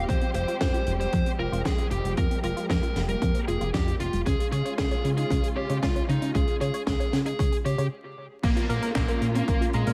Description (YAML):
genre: italo disco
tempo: 115 BPM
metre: 4/4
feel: straight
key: Bb dorian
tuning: A4 = 441 Hz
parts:
  - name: warm studio string section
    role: sustained chords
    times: 0.0-9.9 s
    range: F3 to G4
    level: -37 LUFS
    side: equal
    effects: none
  - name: analog pluck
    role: arpeggios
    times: 0.0-9.9 s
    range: F2 to Db5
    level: -35 LUFS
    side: equal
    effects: chorus, vintage 12-bit sampler grit, tape echo
  - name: chorused synth bass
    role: bass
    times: 0.0-9.9 s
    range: F1 to Db3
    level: -32 LUFS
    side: equal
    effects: none
  - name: fuzz lead guitar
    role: melody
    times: 0.1-9.9 s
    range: Ab3 to C5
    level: -33 LUFS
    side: equal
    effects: distortion, tape echo
  - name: electronic kick drum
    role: drums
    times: 0.1-9.6 s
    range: none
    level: -30 LUFS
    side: equal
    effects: none
  - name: tight funk drum kit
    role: drums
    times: 0.1-9.9 s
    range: crash cymbal, handclaps, hi-hat, snare drum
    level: -37 LUFS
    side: equal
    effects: gated reverb
  - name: downlifter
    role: sound effects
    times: 8.4-9.9 s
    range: none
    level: -40 LUFS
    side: equal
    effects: none
room: light reverb, small room ambience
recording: vinyl crackle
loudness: -26 LUFS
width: mono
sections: 0.0-8.4 A section; 8.4-9.9 B section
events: filter sweep on synth arpeggio sound 0.0-8.4; stop 7.9-8.4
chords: 0.1 Fmadd9; 4.3 Db; 8.4 Bbm